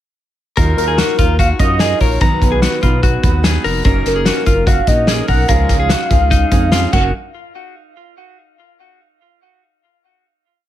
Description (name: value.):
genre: jangly indie pop.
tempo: 146 BPM.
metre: 4/4.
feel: straight.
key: F# major.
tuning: A4 = 439 Hz.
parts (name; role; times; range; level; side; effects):
fingerpicked steel-string acoustic guitar; accompaniment; 0.6-7.1 s; B2 to B4; -22 LUFS; right 5 dB; none.
direct-recorded clean electric guitar; arpeggios; 0.6-7.1 s; D#4 to A#5; -21 LUFS; left 7 dB; ping-pong delay.
chorused synth bass; bass; 0.6-7.1 s; E#1 to F#2; -17 LUFS; equal; none.
loose indie drum kit; drums; 0.6-7.0 s; crash cymbal, hi-hat, kick drum, snare drum; -15 LUFS; equal; none.
warm velvety synth lead; melody; 0.8-7.1 s; A#4 to F#5; -19 LUFS; equal; chorus.
room: light reverb.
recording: none.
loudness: -11 LUFS.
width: side -12 dB against mid.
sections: 0.6-7.1 verse; 7.1-8.8 final hit.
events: none.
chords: 0.6 D#madd9; 2.2 B; 3.9 F#6; 5.5 C#add9; 6.9 F#6; 7.1 N.C..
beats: | 0.57 0.98 1.39 1.80 | 2.21 2.62 3.03 3.44 | 3.85 4.26 4.67 5.08 | 5.49 5.90 6.31 6.72.